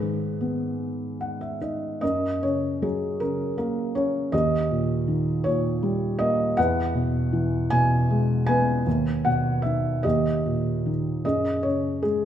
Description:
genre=classical, lyrical solo piano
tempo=52 BPM (dotted quarters)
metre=6/8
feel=uneven beats, rubato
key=unclear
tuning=A4 = 441 Hz
part: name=felt-muted upright piano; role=solo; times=0.0-12.2 s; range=D#2 to G#5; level=-22 LUFS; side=equal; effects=none
room=wet concert hall reverb, RT60 2.1 s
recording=minimal, uncompressed stereo recording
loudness=-22 LUFS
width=side -10 dB against mid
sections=0.0-2.0 A section; 2.0-12.2 B section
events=felt piano fill 0.8-2.0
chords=0.0 G#m; 2.0 F#; 4.3 D#7; 6.6 Eadd9; 8.9 Emaj9/D#; 10.0 D#; 11.2 F#sus2

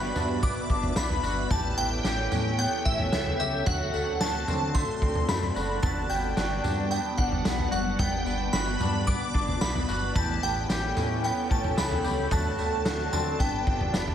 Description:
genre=dream pop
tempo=111 BPM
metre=4/4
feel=straight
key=G major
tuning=A4 = 440 Hz
part: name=shimmering bell with halo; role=melody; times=0.0-14.1 s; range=E5 to D6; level=-31 LUFS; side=equal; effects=ensemble chorus, phaser, digital delay
part: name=ethereal airy pad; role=sustained chords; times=0.0-14.1 s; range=G3 to A5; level=-33 LUFS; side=equal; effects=ensemble chorus, built-in reverb
part: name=electric guitar through a small old amp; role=arpeggios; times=0.0-14.1 s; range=E3 to G4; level=-33 LUFS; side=left 1 dB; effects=analog chorus, digital delay
part: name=chorused synth bass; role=bass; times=0.0-14.1 s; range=F#1 to D3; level=-32 LUFS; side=equal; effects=none
part: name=raw garage drum kit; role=drums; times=0.2-14.1 s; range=kick drum, snare drum, tambourine, toms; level=-29 LUFS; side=equal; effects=none
room=light reverb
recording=none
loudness=-24 LUFS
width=side -9 dB against mid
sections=0.0-14.1 A section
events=none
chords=0.0 Gmaj7; 1.5 A9; 3.7 D7; 5.8 Gmaj7; 10.2 A9; 12.3 D7; 13.4 Gmaj7

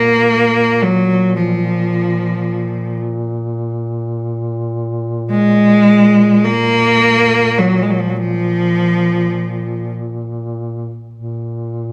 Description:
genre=caucasian folk, Caucasian lament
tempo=52 BPM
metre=3/4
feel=rubato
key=unclear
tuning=A4 = 438 Hz
part: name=rich cello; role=melody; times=0.0-9.9 s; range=F3 to Bb3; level=-14 LUFS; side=equal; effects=none
part: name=dark duduk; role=drone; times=0.0-11.9 s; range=Bb2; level=-23 LUFS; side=equal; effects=none
room=wet recital hall reverb, RT60 1.7 s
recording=none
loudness=-15 LUFS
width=mono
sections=0.0-11.9 A section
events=none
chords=none

